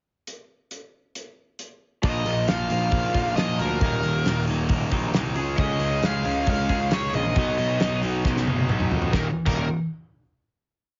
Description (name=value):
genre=quiet-loud alternative rock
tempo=135 BPM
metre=4/4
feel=straight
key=Eb minor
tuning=A4 = 441 Hz
part: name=loose indie drum kit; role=drums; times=0.3-9.6 s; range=crash cymbal, hi-hat, kick drum, snare drum, toms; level=-29 LUFS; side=equal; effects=none
part: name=smooth overdriven lead guitar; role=melody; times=2.0-9.7 s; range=Bb4 to F5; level=-30 LUFS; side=equal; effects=slapback echo
part: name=twangy electric guitar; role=arpeggios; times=2.0-9.6 s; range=Eb2 to Ab4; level=-35 LUFS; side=equal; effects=subtle chorus
part: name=thick fuzz guitar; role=riff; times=2.0-9.6 s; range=Eb2 to Db4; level=-31 LUFS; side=equal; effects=distortion
part: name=fuzz picked electric bass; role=bass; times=2.0-9.7 s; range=Eb1 to F2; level=-29 LUFS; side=equal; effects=overdrive
part: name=tight distorted guitar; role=riff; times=5.6-9.7 s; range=Eb2 to Db4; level=-34 LUFS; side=equal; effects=distortion
room=light reverb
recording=heavily compressed radio sound, nothing above 7.5 kHz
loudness=-24 LUFS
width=mono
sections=0.3-2.0 pickup bar; 2.0-9.1 pre-chorus; 9.1-10.9 final chord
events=drum fill 8.3-9.1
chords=0.3 N.C.; 2.0 Bbsus4; 3.8 Ebm; 5.4 Dbadd9; 7.4 Badd9; 9.1 Ebm